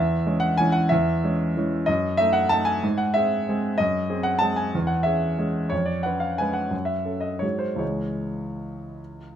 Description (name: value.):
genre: classical, piano waltz.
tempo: 151-198 BPM.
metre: 3/4.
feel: rubato.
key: C# minor.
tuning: A4 = 442 Hz.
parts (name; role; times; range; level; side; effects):
warm grand piano; solo; 0.0-9.4 s; C#2 to A5; -21 LUFS; equal; none.
room: light reverb.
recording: none.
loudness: -21 LUFS.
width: side -9 dB against mid.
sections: 0.0-9.4 A section.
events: none.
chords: 0.0 C#m/E; 1.9 D#dim/F#; 2.8 G#; 3.8 G#7/F#; 4.7 C#m/E; 5.7 C#7/E#; 6.7 F#m; 7.4 G#7; 7.8 C#m.